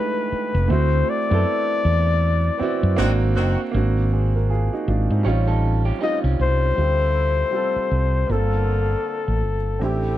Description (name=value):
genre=R&B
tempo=79 BPM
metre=4/4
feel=swing 60% on 16ths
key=D minor from 6.8 s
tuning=A4 = 440 Hz
part: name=mellow flugelhorn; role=melody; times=0.0-10.2 s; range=G4 to Eb5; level=-23 LUFS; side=left 5 dB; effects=slapback echo
part: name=warm upright piano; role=accompaniment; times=0.0-10.2 s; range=G3 to B#4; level=-26 LUFS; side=right 5 dB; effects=none
part: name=woody fretless electric bass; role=bass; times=0.3-10.2 s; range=F1 to G#2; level=-19 LUFS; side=equal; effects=none
part: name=clear horn section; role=stabs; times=3.0-10.2 s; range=C3 to F#4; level=-30 LUFS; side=right 1 dB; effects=slapback echo
part: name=electric guitar through a small old amp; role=second line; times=5.2-6.7 s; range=G3 to C#5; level=-30 LUFS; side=right 7 dB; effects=none
room=light reverb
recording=dark, warm production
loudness=-18 LUFS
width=side -13 dB against mid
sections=0.0-3.7 A section; 3.7-6.8 B section; 6.8-10.2 C section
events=band accent 0.7-3.7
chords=0.0 F9; 0.7 D9; 3.0 G#9; 5.2 A7alt; 6.8 Dm11; 8.3 Gm9